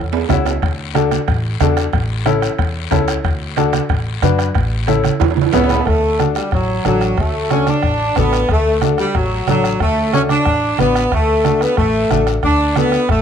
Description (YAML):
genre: latin, cumbia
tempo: 183 BPM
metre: 4/4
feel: straight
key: D major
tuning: A4 = 440 Hz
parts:
  - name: upright bass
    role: bass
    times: 0.0-13.2 s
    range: A1 to F#2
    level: -20 LUFS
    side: equal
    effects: none
  - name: timbales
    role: percussion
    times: 0.1-5.8 s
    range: none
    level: -24 LUFS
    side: right 14 dB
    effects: none
  - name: clear upright piano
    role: accompaniment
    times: 0.3-13.0 s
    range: C#4 to B4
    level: -21 LUFS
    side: left 10 dB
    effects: none
  - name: bombo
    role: percussion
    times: 0.3-13.2 s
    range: none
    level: -21 LUFS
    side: right 1 dB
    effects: none
  - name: congas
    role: percussion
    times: 0.3-12.9 s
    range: none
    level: -21 LUFS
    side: right 9 dB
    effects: none
  - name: guiro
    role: percussion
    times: 0.3-13.2 s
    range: none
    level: -32 LUFS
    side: left 14 dB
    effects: none
  - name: clear saxophone section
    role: melody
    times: 5.5-13.2 s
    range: F#3 to D4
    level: -16 LUFS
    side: equal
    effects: none
room: moderate spring reverb, RT60 1.7 s, studio ambience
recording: 1960s-style stereo with parts hard left and right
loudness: -13 LUFS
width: side -8 dB against mid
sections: 0.0-5.9 A section; 5.9-13.2 B section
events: drum fill 0.0-0.6, 5.2-5.9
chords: 0.0 A (rootless); 0.6 D; 1.9 A; 3.2 D; 4.6 A; 5.9 D